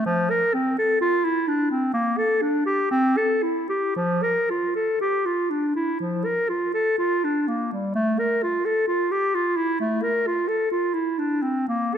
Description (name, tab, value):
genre	classical, baroque-style fantasia for unaccompanied clarinet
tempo	54-66 BPM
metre	4/4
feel	rubato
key	F major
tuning	A4 = 440 Hz
part	clear clarinet	solo	0.0-12.0 s	F3 to Bb4	-21 LUFS	equal	none
room	moderate scoring stage reverb, RT60 1.6 s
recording	none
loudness	-21 LUFS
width	side -8 dB against mid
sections	0.0-7.9 A section; 7.9-12.0 A section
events	none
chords	none